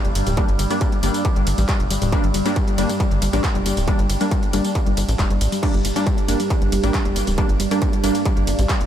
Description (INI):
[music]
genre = driving peak-time techno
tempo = 137 BPM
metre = 4/4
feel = straight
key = G minor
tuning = A4 = 440 Hz
[part]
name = tight sequencer bass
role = bass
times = 0.0-8.9 s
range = D1 to A1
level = -22 LUFS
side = equal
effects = sidechain pumping
[part]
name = overtone-sweeping drone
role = drone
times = 0.0-8.9 s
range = G2 to G3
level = -29 LUFS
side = right 3 dB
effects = chorus, built-in reverb, sidechain pumping
[part]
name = techno drum kit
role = drums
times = 0.0-8.9 s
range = crash cymbal, handclaps, hi-hat, ride cymbal, tambourine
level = -28 LUFS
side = equal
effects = overdrive, sidechain pumping on hats, sidechain pumping on cymbals, sidechain pumping on perc
[part]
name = woody wave-folded pluck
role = riff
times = 0.1-8.7 s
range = G3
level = -26 LUFS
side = left 2 dB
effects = chorus, tube saturation, sidechain pumping, ping-pong delay
[part]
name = rave stab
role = stabs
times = 0.4-8.2 s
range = G3 to D4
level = -24 LUFS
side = right 1 dB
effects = chorus, built-in reverb, sidechain pumping, diffuse ambient delay
[part]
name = electronic kick drum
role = drums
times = 0.4-8.8 s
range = none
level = -21 LUFS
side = equal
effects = distortion, overdrive
[sound]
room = light reverb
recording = none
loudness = -17 LUFS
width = side -10 dB against mid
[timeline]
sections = 0.0-8.9 A section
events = none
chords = 0.0 Gm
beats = | 0.37 0.81 1.25 1.69 | 2.12 2.56 3.00 3.44 | 3.88 4.32 4.75 5.19 | 5.63 6.07 6.50 6.94 | 7.38 7.82 8.26 8.69